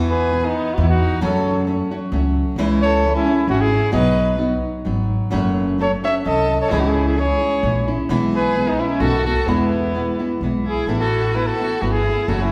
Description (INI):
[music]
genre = mexican folk, mariachi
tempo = 130 BPM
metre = 3/4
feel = straight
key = E major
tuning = A4 = 444 Hz
[part]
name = flamenco guitar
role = accompaniment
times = 0.0-12.5 s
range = E2 to F#4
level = -24 LUFS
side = equal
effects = none
[part]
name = upright bass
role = bass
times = 0.0-12.5 s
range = F#1 to F#2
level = -24 LUFS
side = equal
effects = none
[part]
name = mellow trumpet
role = melody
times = 0.1-12.5 s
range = D#4 to E5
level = -24 LUFS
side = equal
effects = none
[part]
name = rich violin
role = second line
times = 0.1-12.5 s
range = B3 to C#5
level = -27 LUFS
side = equal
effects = none
[sound]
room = wet recital hall reverb, RT60 1.6 s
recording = recorded in a church or concert hall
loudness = -19 LUFS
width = mono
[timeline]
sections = 0.0-10.9 A section; 10.9-12.5 B section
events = none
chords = 0.0 Esus2; 1.2 F#m; 2.6 C#m; 3.9 B; 5.3 F#m; 6.7 C#m; 8.1 E/B; 9.0 B7; 9.5 E; 10.9 Asus2